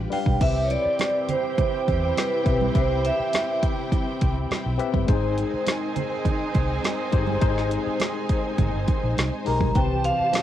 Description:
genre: lush 1970s-style soul.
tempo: 103 BPM.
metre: 4/4.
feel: straight.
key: unclear.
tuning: A4 = 440 Hz.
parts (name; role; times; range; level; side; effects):
rich studio string section; second line; 0.0-10.4 s; C4 to A5; -32 LUFS; left 1 dB; cassette tape, tape echo.
tine electric piano; accompaniment; 0.0-10.4 s; C3 to F5; -30 LUFS; left 10 dB; overdrive, fast stereo tremolo, cassette tape.
string machine, full ensemble; sustained chords; 0.0-10.4 s; C3 to B4; -38 LUFS; equal; phaser, ensemble chorus, cassette tape.
vintage muted fingered electric bass; bass; 0.0-10.2 s; G1 to E2; -26 LUFS; equal; none.
vibraphone with medium hard mallets; melody; 0.1-3.6, 9.5-10.4 s; B4 to Bb5; -24 LUFS; right 2 dB; cassette tape.
deep house drum kit; drums; 0.1-10.4 s; crash cymbal, hi-hat, kick drum, snare drum; -24 LUFS; equal; cassette tape.
congas; percussion; 0.1-10.4 s; none; -33 LUFS; right 10 dB; none.
mellow horn section; stabs; 0.4-9.4 s; Eb3 to Ab4; -33 LUFS; right 9 dB; cassette tape.
room: light reverb.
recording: home recording on cassette.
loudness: -21 LUFS.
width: side -12 dB against mid.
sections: 0.4-10.4 A section.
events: none.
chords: 0.4 Cmaj7; 5.1 Abmaj7; 9.8 Cmaj7.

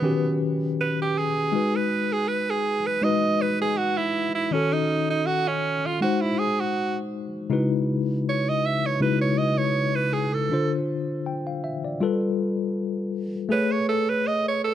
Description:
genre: soul.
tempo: 80 BPM.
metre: 4/4.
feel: swing 54% on 16ths.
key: unclear.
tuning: A4 = 440 Hz.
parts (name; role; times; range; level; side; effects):
edgy alto saxophone; melody; 0.0-14.7 s; B3 to E5; -25 LUFS; right 4 dB; none.
mellow tine electric piano; accompaniment; 0.0-14.7 s; C#3 to G5; -24 LUFS; left 3 dB; medium stereo tremolo.
room: light reverb, studio ambience.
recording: none.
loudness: -22 LUFS.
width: side -11 dB against mid.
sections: 0.0-14.7 A section.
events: alto saxophone solo 0.0-14.7.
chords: 0.0 D#7alt; 1.5 G#m7; 4.5 D#m7b5; 6.0 G#7; 7.5 C#m11; 10.5 Dm7; 12.0 G9; 13.5 Amaj9.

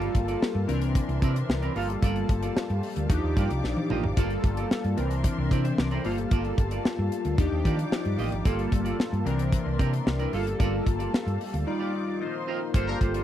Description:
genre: early-eighties boogie funk.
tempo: 112 BPM.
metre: 4/4.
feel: straight.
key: G minor.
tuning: A4 = 441 Hz.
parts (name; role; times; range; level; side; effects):
chorused polysynth; accompaniment; 0.0-13.2 s; E3 to E5; -30 LUFS; left 2 dB; phaser.
dark studio string section; sustained chords; 0.0-13.2 s; G3 to D6; -39 LUFS; left 1 dB; none.
semi-hollow electric guitar; riff; 0.0-13.2 s; Bb3 to F5; -34 LUFS; right 7 dB; lush chorus.
hollow-body short-scale fingered electric bass; bass; 0.0-13.2 s; G1 to Eb3; -28 LUFS; equal; none.
modern studio drum kit; drums; 0.0-13.2 s; hi-hat, kick drum, snare drum, toms; -26 LUFS; equal; none.
clear horn section; second line; 12.9-13.2 s; F3 to Bb4; -34 LUFS; left 2 dB; none.
room: little or no reverb.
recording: dry, close 1970s-style studio recording.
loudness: -24 LUFS.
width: side -11 dB against mid.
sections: 0.0-12.7 A section.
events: drum fill 3.6-4.2; break 11.7-12.7.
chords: 0.0 Gm9; 0.7 C9; 1.8 Gm9; 3.1 Ebmaj9; 4.2 Gm9; 5.0 C9; 6.0 Gm9; 7.4 Ebmaj9; 8.5 Gm9; 9.3 C9; 10.3 Gm9; 11.7 Ebmaj9; 12.2 F7sus4.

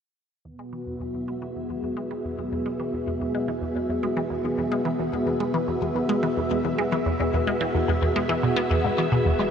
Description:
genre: ambient.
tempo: 109 BPM.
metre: 4/4.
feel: straight.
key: E major.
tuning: A4 = 439 Hz.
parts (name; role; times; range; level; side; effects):
string machine, full ensemble; sustained chords; 0.5-9.5 s; B3 to E5; -25 LUFS; equal; ensemble chorus.
resonant blip pluck; riff; 0.5-9.5 s; E2 to B3; -27 LUFS; equal; phaser, ping-pong delay.
fat analog bass; bass; 9.3-9.5 s; E1; -44 LUFS; equal; none.
room: wet huge ambient reverb, RT60 8.6 s.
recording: cassette tape.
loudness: -23 LUFS.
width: side -7 dB against mid.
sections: 0.5-9.3 A section.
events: fade-in on synth arpeggio sound 0.5-9.3; filter sweep on string machine 0.5-9.3.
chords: 0.5 Eadd9.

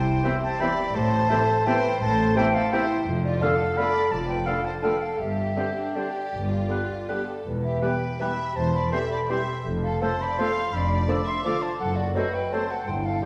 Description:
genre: classical.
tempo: 150-185 BPM.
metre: 3/4.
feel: rubato.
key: C major.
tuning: A4 = 440 Hz.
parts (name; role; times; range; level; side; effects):
rich chamber violin section; melody; 0.0-13.3 s; F4 to F5; -38 LUFS; equal; none.
concert flute; second line; 0.0-13.2 s; D5 to D6; -31 LUFS; equal; none.
mellow French horn section; sustained chords; 0.0-13.3 s; D4 to C5; -33 LUFS; equal; none.
clear chamber double bass section; bass; 0.0-13.2 s; E1 to C2; -32 LUFS; equal; none.
warm studio cello section; bass; 0.0-13.2 s; E2 to C3; -34 LUFS; equal; none.
clear oboe; second line; 0.2-13.3 s; B4 to G5; -38 LUFS; equal; none.
mellow clarinet; second line; 0.2-13.3 s; G4 to E5; -37 LUFS; equal; none.
warm chamber violin section; second line; 0.2-12.6 s; B3 to A4; -40 LUFS; equal; none.
mellow bassoon; accompaniment; 0.2-13.3 s; C3 to F#3; -37 LUFS; equal; none.
rich chamber viola section; accompaniment; 0.2-13.3 s; D3 to C4; -36 LUFS; equal; none.
timpani; percussion; 12.9-13.3 s; G2; -42 LUFS; equal; none.
room: wet scoring stage reverb, RT60 1.5 s.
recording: heard from further back in the room.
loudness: -25 LUFS.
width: mono.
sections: 0.0-13.3 A section.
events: none.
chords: 0.0 C; 0.9 Am7; 3.1 Dm/F; 5.2 Gsus4; 6.3 G; 7.5 Em; 8.6 C/E; 9.7 F; 10.7 Dm/F; 11.8 F#dim.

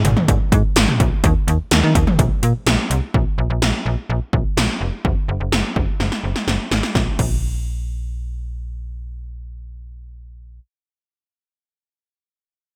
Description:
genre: synth-pop.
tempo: 126 BPM.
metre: 4/4.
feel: straight.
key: unclear.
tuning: A4 = 444 Hz.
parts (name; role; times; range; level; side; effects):
slap-like FM bass; bass; 0.0-10.6 s; F1 to Eb3; -23 LUFS; equal; none.
80s electronic pad drums; drums; 0.0-7.3 s; crash cymbal, hi-hat, kick drum, snare drum, toms; -20 LUFS; equal; gated reverb on snare and toms.
room: light reverb.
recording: bright 1980s-style digital production.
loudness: -19 LUFS.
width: mono.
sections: 0.0-3.1 A section; 3.1-7.0 B section; 7.0-10.8 C section.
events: drum fill 6.0-7.0.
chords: none.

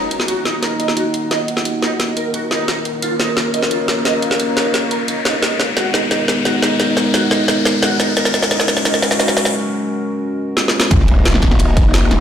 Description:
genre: dark technical drum and bass.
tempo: 175 BPM.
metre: 4/4.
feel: straight.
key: Eb minor.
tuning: A4 = 443 Hz.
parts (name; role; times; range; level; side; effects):
dark analog pad; sustained chords; 0.0-12.2 s; Ab3 to Eb5; -21 LUFS; equal; chorus, sidechain pumping.
electric guitar at the edge of break-up; arpeggios; 0.0-9.3 s; Eb4 to Eb5; -23 LUFS; right 3 dB; analog chorus, sidechain pumping, low-pass filter, digital delay.
riser and impact; sound effects; 1.7-12.2 s; none; -21 LUFS; left 1 dB; none.
deep dark ambient pad; texture; 0.0-12.2 s; Eb4 to Db6; -26 LUFS; left 2 dB; chorus, built-in reverb, sidechain pumping.
drum and bass drum kit; drums; 0.1-12.2 s; hi-hat, snare drum; -18 LUFS; equal; none.
growl bass; bass; 10.9-12.2 s; Eb1 to F1; -17 LUFS; equal; chorus, overdrive, sidechain pumping.
crunchy breakbeat drum kit; drums; 10.9-12.2 s; ride cymbal, snare drum; -34 LUFS; equal; none.
electronic kick drum; drums; 10.9-11.8 s; none; -15 LUFS; equal; overdrive.
room: moderate plate reverb, RT60 1.6 s.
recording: played on a big sound system in a bare room, stone room reverb.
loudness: -14 LUFS.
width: side -9 dB against mid.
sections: 0.0-10.9 A section; 10.9-12.2 B section.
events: build-up 0.0-10.9; drum fill 0.0-9.5, 10.6-10.9; riser 1.7-9.5; break 9.5-10.9; drop 10.9-12.2; impact 10.9-12.2.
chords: 0.0 Ebm; 2.7 Bbm; 5.4 Abmadd9; 8.2 Gbadd9; 10.9 Ebm.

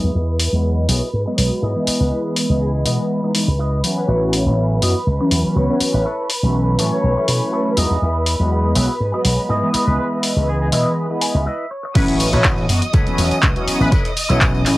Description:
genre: filtered disco house.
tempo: 122 BPM.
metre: 4/4.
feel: straight.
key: E major.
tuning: A4 = 439 Hz.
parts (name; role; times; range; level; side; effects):
mellow synth brass; accompaniment; 0.0-14.8 s; E3 to D#5; -20 LUFS; equal; chorus, phaser, sidechain pumping, low-pass filter, cassette tape.
clear chamber violin section; sustained chords; 0.0-14.8 s; B4 to D#6; -25 LUFS; right 1 dB; vintage 12-bit sampler grit, sidechain pumping, low-pass filter, cassette tape.
electric guitar with an envelope filter; riff; 0.0-14.6 s; E4 to G#5; -26 LUFS; left 1 dB; analog chorus, sidechain pumping, low-pass filter, cassette tape.
slap bass with an envelope filter; bass; 0.0-14.8 s; A1 to B2; -18 LUFS; equal; sidechain pumping, low-pass filter.
tambourine; percussion; 0.0-14.8 s; none; -33 LUFS; left 9 dB; none.
punchy analog drum machine; drums; 0.4-14.8 s; crash cymbal, handclaps, hi-hat; -21 LUFS; left 1 dB; sidechain pumping on hats, cassette tape, sidechain pumping on cymbals.
brilliant trumpet section; melody; 2.0-14.0 s; G#4 to C#5; -27 LUFS; left 1 dB; vintage 12-bit sampler grit, sidechain pumping, low-pass filter.
electronic kick drum; drums; 12.0-14.5 s; none; -18 LUFS; equal; cassette tape.
room: moderate booth ambience, RT60 0.2 s.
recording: home recording on cassette.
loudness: -15 LUFS.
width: side -18 dB against mid.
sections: 0.0-12.0 A section; 12.0-14.8 B section.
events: filter sweep 0.0-12.0; clean electric guitar fill 11.0-12.0; break 11.5-12.0; drop 12.0-14.8.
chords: 0.0 Emaj7; 1.9 C#m9; 4.1 A69; 6.1 B9sus4; 7.8 Emaj7; 9.7 C#m9; 12.0 A69; 13.9 B9sus4.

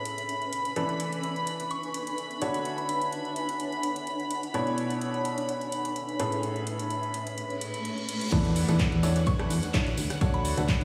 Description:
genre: piano house.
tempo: 127 BPM.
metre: 4/4.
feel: swing 54% on 16ths.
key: E mixolydian.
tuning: A4 = 440 Hz.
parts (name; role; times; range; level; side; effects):
rich studio violin section; sustained chords; 0.0-10.8 s; F#5 to B5; -37 LUFS; equal; sidechain pumping.
bright grand piano; riff; 0.0-10.8 s; A2 to C#5; -35 LUFS; equal; sidechain pumping, analog delay.
granular cloud pad; texture; 0.0-10.8 s; A3 to B5; -39 LUFS; equal; built-in reverb, ensemble chorus, sidechain pumping.
house drum kit; drums; 0.1-10.8 s; crash cymbal, handclaps, hi-hat, rim click; -40 LUFS; equal; none.
soft synth bell; melody; 1.7-3.0, 9.3-10.5 s; B5 to C#6; -40 LUFS; equal; chorus, phaser, analog delay.
reverse cymbal and downlifter; sound effects; 7.6-10.8 s; none; -43 LUFS; equal; none.
solid FM bass; bass; 8.3-10.8 s; D2 to E2; -30 LUFS; equal; sidechain pumping.
electronic kick drum; drums; 8.3-10.8 s; none; -30 LUFS; equal; none.
huge arena drum kit; drums; 8.3-10.8 s; ride cymbal, snare drum; -47 LUFS; equal; none.
tambourine; percussion; 8.3-10.8 s; none; -46 LUFS; equal; none.
room: wet lush hall reverb, RT60 2.1 s.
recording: dreamy mix soaked in reverb, studio reverb.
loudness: -29 LUFS.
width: mono.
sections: 0.0-8.3 A section; 8.3-10.8 B section.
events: reverse cymbal 7.6-8.3; drop 8.3-10.8.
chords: 0.0 Amaj9; 0.8 E7sus4; 2.4 Dmaj7; 4.5 Bm11; 6.2 Amaj9; 8.3 E7sus4; 10.0 Dmaj7.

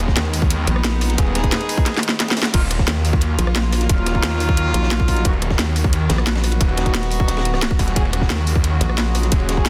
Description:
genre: dark technical drum and bass.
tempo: 177 BPM.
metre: 4/4.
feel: straight.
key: Eb minor.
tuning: A4 = 440 Hz.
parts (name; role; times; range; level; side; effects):
rich chamber string section; sustained chords; 0.0-9.7 s; Db3 to F#4; -31 LUFS; equal; sidechain pumping.
snarling distorted saw bass; bass; 0.0-9.7 s; Eb1 to Eb2; -23 LUFS; equal; distortion, overdrive.
drum and bass drum kit; drums; 0.0-9.7 s; crash cymbal, hi-hat, rim click, snare drum; -24 LUFS; equal; overdrive, studio reverb.
crunchy breakbeat drum kit; drums; 0.1-9.7 s; ride cymbal, snare drum; -33 LUFS; equal; none.
electronic kick drum; drums; 0.1-9.6 s; none; -21 LUFS; equal; overdrive, studio reverb.
vowel-sweep wobble bass; bass; 0.7-1.2, 3.4-9.3 s; D#1 to Bb1; -22 LUFS; equal; chorus.
warm brass ensemble; stabs; 1.2-9.7 s; Gb3 to Ab4; -29 LUFS; equal; delay.
room: small room ambience.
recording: dense, heavily limited modern master.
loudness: -18 LUFS.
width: mono.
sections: 0.0-2.5 A section; 2.5-9.7 A section.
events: drop 0.0-2.5, 2.5-9.7; drum fill 1.9-2.5; band accent 2.4.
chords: 0.0 Abm/Eb; 2.5 Ebmadd9; 5.3 B/D#; 8.0 Dbsus4/Eb.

